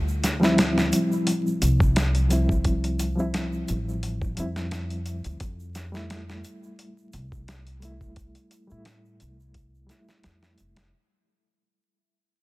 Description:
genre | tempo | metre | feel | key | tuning
trip hop | 87 BPM | 4/4 | swing 54% on 16ths | unclear | A4 = 440 Hz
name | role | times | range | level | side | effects
upright bass | bass | 0.0-10.9 s | F1 to A2 | -27 LUFS | equal | none
tube shaker | percussion | 0.1-10.9 s | none | -42 LUFS | right 5 dB | none
dusty soul sampler-style drum kit | drums | 0.2-10.9 s | hi-hat, kick drum, snare drum | -26 LUFS | equal | studio reverb
reed electric piano | accompaniment | 0.4-10.9 s | F3 to E4 | -26 LUFS | equal | fast tremolo, tape echo
room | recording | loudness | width
light reverb, small room ambience | dense, heavily limited modern master, vinyl crackle | -22 LUFS | side -20 dB against mid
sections
0.0-10.9 A section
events
fade-out 0.0-10.9; filter sweep on upright bass 0.0-10.9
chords
0.0 Dm11; 5.4 Fmaj9

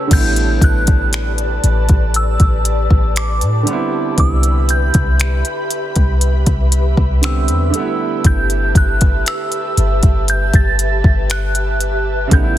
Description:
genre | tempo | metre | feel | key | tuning
contemporary R&B | 59 BPM | 4/4 | straight | unclear | A4 = 440 Hz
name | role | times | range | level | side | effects
glassy synth bell | melody | 0.0-12.6 s | D6 to A6 | -22 LUFS | right 1 dB | chorus, digital delay
clear concert grand piano | accompaniment | 0.0-12.6 s | C#3 to G4 | -24 LUFS | right 6 dB | none
ethereal airy pad | sustained chords | 0.0-12.6 s | G4 to B5 | -23 LUFS | left 1 dB | ensemble chorus, built-in reverb
clean 808-style bass | bass | 0.1-12.6 s | G1 to A2 | -16 LUFS | equal | none
smooth R&B drum kit | drums | 0.1-12.6 s | crash cymbal, finger snaps, hi-hat, kick drum | -14 LUFS | equal | soft clipping on snare
room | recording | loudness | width
digital ambience | dense, heavily limited modern master | -13 LUFS | side -12 dB against mid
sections
0.1-12.6 A section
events
none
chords
0.1 A9sus4; 3.7 Cmaj7; 7.7 G69

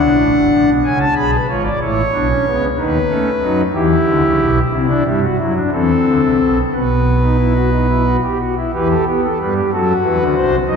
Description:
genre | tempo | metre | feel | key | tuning
classical, baroque-style 3-part fugue for pipe organ | 61 BPM (dotted quarters) | 6/8 | straight | E minor from 4.7 s | A4 = 440 Hz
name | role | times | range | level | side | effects
pipe organ, foundations | solo | 0.0-10.8 s | G1 to B5 | -13 LUFS | equal | none
room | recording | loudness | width
wet church reverb, RT60 2.8 s | recorded in a church or concert hall | -13 LUFS | side -6 dB against mid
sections
0.8-8.7 A section; 8.7-10.8 B section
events
none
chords
0.0 D; 0.8 C#7; 1.8 Aadd9; 2.8 B7/D#; 3.8 Em; 4.7 C; 5.7 Cmaj13; 6.7 B; 8.7 Em; 9.7 F#m7b5

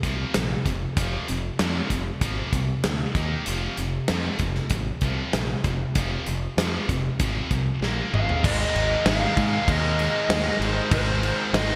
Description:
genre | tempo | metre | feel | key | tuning
hard rock | 96 BPM | 4/4 | straight | F minor | A4 = 441 Hz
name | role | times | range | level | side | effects
scooped high-gain guitar | riff | 0.0-11.8 s | F2 to Eb4 | -34 LUFS | equal | distortion
scooped high-gain guitar | riff | 0.0-11.8 s | F2 to Eb4 | -33 LUFS | equal | distortion
growling fingered electric bass | bass | 0.0-11.7 s | F1 to Ab2 | -30 LUFS | equal | overdrive
big rock drum kit | drums | 0.0-11.7 s | crash cymbal, hi-hat, kick drum, snare drum, toms | -29 LUFS | equal | gated reverb
lead guitar through a small cranked amp | melody | 8.1-11.8 s | C5 to F5 | -29 LUFS | equal | overdrive, lush chorus
distorted electric guitar | riff | 8.4-11.8 s | Ab2 to Ab3 | -36 LUFS | equal | none
overdriven tonewheel organ | sustained chords | 8.5-11.8 s | Ab3 to Bb4 | -41 LUFS | equal | none
room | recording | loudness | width
moderate lush hall reverb, RT60 2.4 s | bright 1980s-style digital production | -24 LUFS | mono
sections
0.0-8.4 A section; 8.4-11.8 B section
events
drum fill 7.8-8.4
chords
0.0 F5; 3.2 Eb5; 3.5 F5; 7.8 Bb5; 8.1 Ab5; 8.4 Ab

